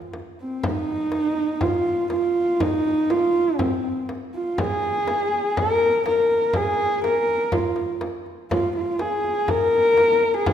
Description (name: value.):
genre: mongolian traditional, Mongolian folk.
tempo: 122 BPM.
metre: 4/4.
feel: straight.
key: F yu mode.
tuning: A4 = 439 Hz.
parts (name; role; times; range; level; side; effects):
dark horsehead fiddle; melody; 0.0-10.5 s; C4 to Bb4; -20 LUFS; equal; none.
frame drum; percussion; 0.0-10.5 s; none; -29 LUFS; left 1 dB; none.
room: moderate scoring stage reverb, RT60 1.7 s.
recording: minimal, uncompressed stereo recording.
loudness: -19 LUFS.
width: side -9 dB against mid.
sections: 0.6-10.5 A section.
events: none.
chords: none.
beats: 0.13 | 0.63 1.12 1.62 2.12 | 2.61 3.10 3.60 4.09 | 4.59 5.08 5.57 6.06 | 6.55 7.04 7.53 8.02 | 8.51 8.99 9.48 9.97 | 10.46.